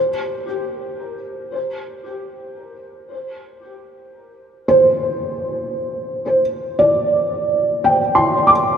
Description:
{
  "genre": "ambient",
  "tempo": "57 BPM",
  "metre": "4/4",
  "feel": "straight",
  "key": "unclear",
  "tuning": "A4 = 440 Hz",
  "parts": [
    { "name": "felt-muted upright piano", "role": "solo", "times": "0.0-8.8 s", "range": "C5 to D6", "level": "-16 LUFS", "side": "right 1 dB", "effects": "analog chorus, diffuse ambient delay" }
  ],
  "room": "wet cathedral reverb, RT60 5.3 s",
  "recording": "dreamy mix soaked in reverb, cassette tape",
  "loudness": "-16 LUFS",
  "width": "side -8 dB against mid",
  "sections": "0.0-8.8 A section",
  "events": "none",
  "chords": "0.0 D7(no3)"
}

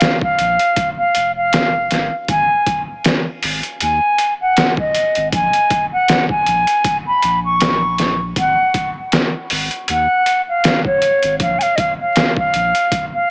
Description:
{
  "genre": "trip hop",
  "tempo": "79 BPM",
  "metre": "4/4",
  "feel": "swing 55% on 16ths",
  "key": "G# dorian",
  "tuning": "A4 = 440 Hz",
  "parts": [
    { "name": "mellow wooden flute", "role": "melody", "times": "0.0-13.3 s", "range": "C#5 to C#6", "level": "-15 LUFS", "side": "equal", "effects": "dub echo" },
    { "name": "trip hop sampler-style drum kit", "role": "drums", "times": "0.0-13.1 s", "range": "hi-hat, kick drum, snare drum", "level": "-18 LUFS", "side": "equal", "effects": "overdrive" },
    { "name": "soft dub sub bass", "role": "bass", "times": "0.4-12.7 s", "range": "E#1 to D#2", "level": "-26 LUFS", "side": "equal", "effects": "none" }
  ],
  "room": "light reverb",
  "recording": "vinyl crackle, small speaker sound",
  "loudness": "-13 LUFS",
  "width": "side -35 dB against mid",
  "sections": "0.0-13.3 A section",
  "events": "none",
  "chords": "0.0 N.C.; 2.3 G#5; 5.3 A#m; 8.4 G#5; 11.4 A#5"
}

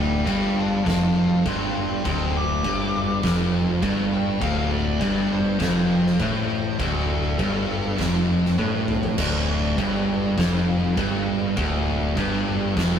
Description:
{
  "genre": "stoner and doom metal",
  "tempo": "101 BPM",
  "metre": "4/4",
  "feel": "straight",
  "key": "D minor",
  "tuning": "A4 = 441 Hz",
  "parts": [
    { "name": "fuzz lead guitar", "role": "melody", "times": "0.0-8.0 s", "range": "A4 to D6", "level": "-30 LUFS", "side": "left 2 dB", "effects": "distortion" },
    { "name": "biting overdriven guitar", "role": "riff", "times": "0.0-13.0 s", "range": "D2 to A2", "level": "-26 LUFS", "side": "equal", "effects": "none" },
    { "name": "thick fuzz guitar", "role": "riff", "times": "0.0-13.0 s", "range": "D2 to A2", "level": "-28 LUFS", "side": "left 6 dB", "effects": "distortion" },
    { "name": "thick fuzz guitar", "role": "riff", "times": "0.0-13.0 s", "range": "D2 to A2", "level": "-26 LUFS", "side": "right 3 dB", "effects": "distortion" },
    { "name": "growling picked electric bass", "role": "bass", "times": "0.0-13.0 s", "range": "D1 to A1", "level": "-28 LUFS", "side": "equal", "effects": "overdrive" },
    { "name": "oversized low-tuned drum kit", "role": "drums", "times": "0.3-12.9 s", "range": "crash cymbal, kick drum, snare drum, toms", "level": "-28 LUFS", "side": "equal", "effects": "none" }
  ],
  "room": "light reverb",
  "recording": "rough rehearsal-room recording, tube saturation",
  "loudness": "-20 LUFS",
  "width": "side -8 dB against mid",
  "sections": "0.0-9.2 A section; 9.2-13.0 B section",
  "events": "lead electric guitar solo 0.0-9.2; drum fill 8.6-9.2",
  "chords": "0.0 Dm"
}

